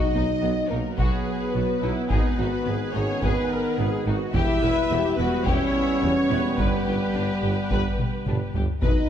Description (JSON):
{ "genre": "cinematic, epic orchestral film score", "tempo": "107 BPM", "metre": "4/4", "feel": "straight", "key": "unclear", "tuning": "A4 = 439 Hz", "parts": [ { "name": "rich symphonic violin section", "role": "melody", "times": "0.0-9.1 s", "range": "B3 to B4", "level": "-35 LUFS", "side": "left 5 dB", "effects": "none" }, { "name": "rich symphonic violin section", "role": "second line", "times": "0.0-9.1 s", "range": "G4 to E5", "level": "-32 LUFS", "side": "left 2 dB", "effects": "none" }, { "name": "bright trombone section", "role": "sustained chords", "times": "0.0-9.1 s", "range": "D#3 to B3", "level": "-32 LUFS", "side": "right 5 dB", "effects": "none" }, { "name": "mellow French horn section", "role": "sustained chords", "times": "0.0-9.1 s", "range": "G3 to E4", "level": "-27 LUFS", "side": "left 2 dB", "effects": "none" }, { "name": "timpani", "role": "percussion", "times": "0.0-0.7 s", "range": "B2", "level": "-34 LUFS", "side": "equal", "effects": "none" }, { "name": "clear tuba", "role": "bass", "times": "0.1-8.9 s", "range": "E1 to B1", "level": "-33 LUFS", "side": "right 3 dB", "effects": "none" }, { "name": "rich symphonic cello section", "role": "bass", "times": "0.1-8.9 s", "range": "E2 to B2", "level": "-32 LUFS", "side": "right 3 dB", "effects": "none" }, { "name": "rich symphonic double bass section", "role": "bass", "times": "0.1-8.9 s", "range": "E1 to B1", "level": "-31 LUFS", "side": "right 2 dB", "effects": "none" }, { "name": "clear symphonic viola section", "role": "accompaniment", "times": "1.0-8.6 s", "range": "D#4 to C#5", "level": "-31 LUFS", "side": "right 1 dB", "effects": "none" }, { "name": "taiko ensemble", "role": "drums", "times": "1.0-9.1 s", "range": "none", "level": "-26 LUFS", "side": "equal", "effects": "none" } ], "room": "moderate scoring stage reverb, RT60 2.0 s", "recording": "dark, warm production", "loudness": "-21 LUFS", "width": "side -9 dB against mid", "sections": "0.0-9.1 A section", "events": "drum fill 8.0-8.8", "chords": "0.0 B; 2.1 G#m; 4.3 Em; 6.6 G" }